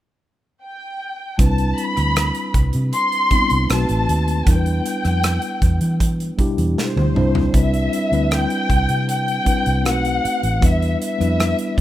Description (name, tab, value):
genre	lush 1970s-style soul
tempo	78 BPM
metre	4/4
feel	straight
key	C major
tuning	A4 = 440 Hz
part	dark studio violin section	melody	0.6-11.8 s	C5 to C6	-22 LUFS	left 1 dB	none
part	mellow tine electric piano	accompaniment	1.4-11.8 s	B2 to C5	-23 LUFS	left 1 dB	medium stereo tremolo
part	vintage muted fingered electric bass	bass	1.4-11.8 s	A1 to E3	-20 LUFS	equal	none
part	modern studio drum kit	drums	1.4-11.8 s	hi-hat, kick drum, rim click, snare drum, toms	-20 LUFS	equal	none
room	studio reverb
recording	rough home demo mix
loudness	-16 LUFS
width	side -13 dB against mid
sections	0.0-1.4 A section; 1.4-7.5 B section; 7.5-11.8 C section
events	drum fill 6.8-7.5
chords	0.0 N.C.; 1.4 Cmaj9; 3.7 B7b9; 4.5 Em7; 7.2 Cadd9; 7.5 Cmaj9; 9.9 B7b9; 10.6 Em7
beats	0.62 | 1.39 2.16 2.93 3.70 | 4.47 5.24 6.00 6.77 | 7.54 8.31 9.08 9.85 | 10.62 11.39